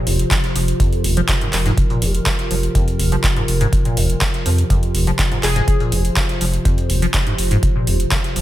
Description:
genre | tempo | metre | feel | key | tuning
acid house | 123 BPM | 4/4 | straight | F minor | A4 = 440 Hz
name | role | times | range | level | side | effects
warbly tape-like pad | sustained chords | 0.0-8.4 s | C3 to C5 | -23 LUFS | equal | chorus, built-in reverb, sidechain pumping
liquid acid bass | riff | 0.0-8.4 s | Eb2 to F3 | -22 LUFS | equal | phaser, tube saturation, wide subtle chorus
round analog bass | bass | 0.1-8.4 s | F1 to F2 | -20 LUFS | equal | sidechain pumping
booming analog drum machine | drums | 0.1-8.4 s | handclaps, hi-hat | -23 LUFS | right 1 dB | none
breakbeat sampler-style drum kit | drums | 0.1-8.4 s | hi-hat, snare drum | -34 LUFS | equal | none
electronic kick drum | drums | 0.3-8.2 s | none | -19 LUFS | equal | none
plucky unison lead | melody | 5.4-5.8 s | Ab4 | -25 LUFS | left 2 dB | lush chorus, ping-pong delay
room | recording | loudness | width
light reverb | none | -15 LUFS | side -14 dB against mid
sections
0.0-8.4 A section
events
none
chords
0.0 F5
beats
0.31 | 0.80 1.29 1.77 2.26 | 2.75 3.24 3.73 4.21 | 4.70 5.19 5.68 6.17 | 6.65 7.14 7.63 8.12

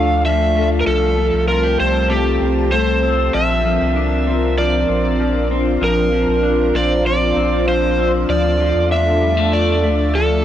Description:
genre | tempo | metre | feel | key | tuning
dream pop | 97 BPM | 4/4 | straight | Bb lydian | A4 = 441 Hz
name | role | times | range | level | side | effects
overdriven slide guitar | melody | 0.0-10.4 s | G4 to F5 | -18 LUFS | right 2 dB | analog delay
lush unison pad | sustained chords | 0.0-10.4 s | G3 to A5 | -21 LUFS | equal | chorus
clean electric guitar | arpeggios | 0.0-10.4 s | F3 to G4 | -21 LUFS | left 5 dB | wide subtle chorus, analog delay
warm sub bass | bass | 0.0-10.4 s | Bb1 to E2 | -20 LUFS | equal | none
room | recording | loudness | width
light reverb | cassette tape | -14 LUFS | side -11 dB against mid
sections
0.0-10.4 A section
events
none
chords
0.0 Dm; 0.9 Fadd9/C; 3.3 Bbadd9; 8.3 Dm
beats
0.25 | 0.87 1.49 2.10 2.72 | 3.34 3.96 4.58 5.20 | 5.82 6.43 7.05 7.67 | 8.29 8.91 9.53 10.15

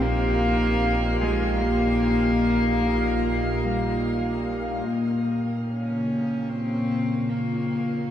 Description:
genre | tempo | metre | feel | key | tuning
ambient | 74 BPM | 4/4 | straight | Bb dorian | A4 = 442 Hz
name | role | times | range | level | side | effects
rich cello | melody | 0.0-8.1 s | Ab3 to Db4 | -26 LUFS | equal | diffuse ambient delay
warm analog pad | sustained chords | 0.0-8.1 s | Bb2 to F5 | -24 LUFS | equal | chorus
warm sub bass | bass | 0.0-4.8 s | Bb1 | -28 LUFS | equal | none
analog drone | drone | 4.1-5.0 s | none | barely audible | none | none
Celtic harp | arpeggios | 1.2-6.0 s | G3 to G4 | -40 LUFS | left 1 dB | none
room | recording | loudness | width
moderate shimmer reverb, RT60 7.4 s | lossy compression artefacts | -22 LUFS | side -10 dB against mid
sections
0.0-4.9 A section; 4.9-8.1 B section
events
fade-in on cello 4.9-8.1; filter sweep on analog synth pad 4.9-8.1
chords
0.0 Ebadd9/Bb; 4.9 Bbm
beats
0.79 | 1.59 2.40 3.23 4.05 | 4.88 5.69 6.51 7.32

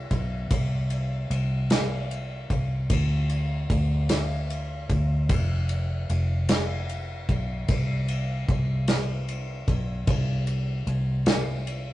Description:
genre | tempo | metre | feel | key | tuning
six-eight pop ballad | 50 BPM (dotted quarters) | 6/8 | straight | unclear | A4 = 440 Hz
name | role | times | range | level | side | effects
vintage muted fingered electric bass | bass | 0.0-11.9 s | F1 to D2 | -26 LUFS | equal | none
unplugged drum kit | drums | 0.1-11.9 s | kick drum, ride cymbal, snare drum | -27 LUFS | equal | none
room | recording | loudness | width
moderate stone room reverb, RT60 1.3 s | rough rehearsal-room recording, nothing above 10.5 kHz | -24 LUFS | side -16 dB against mid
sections
0.0-11.9 A section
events
none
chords
none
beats
| 0.51 1.71 | 2.90 4.10 | 5.30 6.49 | 7.69 8.88 | 10.08 11.27

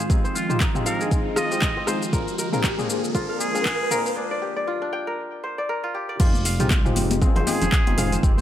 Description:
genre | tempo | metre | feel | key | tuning
afro house | 118 BPM | 4/4 | swing 57% on 16ths | F dorian | A4 = 440 Hz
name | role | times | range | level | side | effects
trumpet with straight mute | melody | 0.0-4.1, 7.5-8.2 s | F4 to Eb5 | -29 LUFS | equal | tape echo
ethereal airy pad | sustained chords | 0.0-8.4 s | D3 to Eb5 | -32 LUFS | equal | ensemble chorus, built-in reverb, sidechain pumping
kora | arpeggios | 0.0-8.4 s | C4 to G5 | -29 LUFS | equal | sidechain pumping, low-pass filter, tape echo
riser | sound effects | 0.3-4.2 s | none | -31 LUFS | equal | none
warm analog keys | stabs | 0.1-8.3 s | Ab3 to G5 | -29 LUFS | left 3 dB | chorus, vintage 12-bit sampler grit, sidechain pumping, low-pass filter, tape echo
deep house drum kit | drums | 0.1-8.4 s | crash cymbal, handclaps, hi-hat, rim click, shaker, toms | -26 LUFS | equal | overdrive
electronic kick drum | drums | 0.1-8.3 s | none | -21 LUFS | equal | none
smooth gliding synth bass | bass | 6.2-8.4 s | F1 to C2 | -26 LUFS | equal | sidechain pumping
congas | percussion | 6.3-8.4 s | none | -28 LUFS | left 3 dB | none
room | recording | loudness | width
light reverb | high-pass filter | -20 LUFS | side -11 dB against mid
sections
0.0-6.2 A section; 6.2-8.4 B section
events
build-up 0.0-6.2; filter sweep on synth keys 0.0-6.2; riser 0.3-4.2; break 4.2-6.2; drop 6.2-8.4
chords
0.0 Fm7; 2.1 Bb7; 4.2 Gm7; 6.2 Fm7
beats
| 0.10 0.61 1.11 1.62 | 2.13 2.64 3.15 3.66 | 4.17 4.67 5.18 5.69 | 6.20 6.71 7.22 7.72 | 8.23

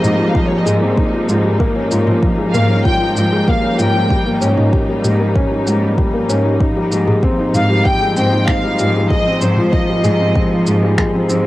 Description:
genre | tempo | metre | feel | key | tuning
piano and strings electronica | 96 BPM | 4/4 | straight | unclear | A4 = 439 Hz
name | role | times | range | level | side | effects
warm studio violin section | melody | 0.0-10.7 s | C5 to G5 | -20 LUFS | equal | cassette tape, tape echo
dark studio string section | sustained chords | 0.0-11.5 s | F3 to Eb4 | -20 LUFS | equal | cassette tape
felt-muted upright piano | riff | 0.0-11.5 s | F3 to G4 | -18 LUFS | left 1 dB | cassette tape, tape echo
rich studio cello section | bass | 0.0-11.5 s | Ab2 | -19 LUFS | equal | sidechain pumping
organic electronic drum kit | drums | 0.0-11.4 s | finger snaps, shaker, toms | -21 LUFS | equal | cassette tape
electronic kick drum | drums | 0.3-11.1 s | none | -17 LUFS | equal | cassette tape
room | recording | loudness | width
moderate booth ambience, RT60 0.2 s | home recording on cassette | -12 LUFS | side -16 dB against mid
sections
0.0-11.5 A section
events
none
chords
0.0 Fm9/Ab; 1.6 Db6/Ab; 6.6 Fm9/Ab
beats
0.35 0.98 | 1.60 2.23 2.85 3.48 | 4.10 4.73 5.35 5.98 | 6.60 7.23 7.85 8.48 | 9.10 9.73 10.35 10.98

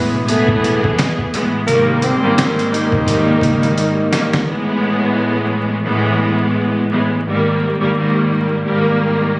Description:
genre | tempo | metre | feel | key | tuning
hip hop, boom-bap hip-hop | 86 BPM | 4/4 | swing 60% on 16ths | unclear | A4 = 439 Hz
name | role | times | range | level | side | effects
growling tenor saxophone | melody | 0.0-4.4 s | A3 to Eb4 | -20 LUFS | equal | high-pass filter, low-pass filter, digital delay
clear studio string section | accompaniment | 0.0-9.4 s | Ab2 to G#4 | -14 LUFS | equal | high-pass filter, low-pass filter
warm horn section | stabs | 0.0-4.1 s | Ab3 to C5 | -27 LUFS | equal | none
saturated sub bass | bass | 0.1-4.4 s | E1 to G1 | -22 LUFS | equal | none
trip hop sampler-style drum kit | drums | 0.3-4.5 s | hi-hat, kick drum, snare drum | -20 LUFS | equal | none
room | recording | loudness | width
light reverb | recorded on a phone in the room, studio reverb, vinyl crackle | -13 LUFS | side -25 dB against mid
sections
0.0-4.5 A section; 4.5-9.4 B section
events
drum fill 3.8-4.5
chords
0.0 F#m11 (rootless); 1.7 Fm11; 4.5 Eadd11/A; 7.3 D#add11/G#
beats
0.28 0.98 | 1.68 2.38 3.07 3.77 | 4.47 5.17 5.86 6.56 | 7.26 7.96 8.65 9.35

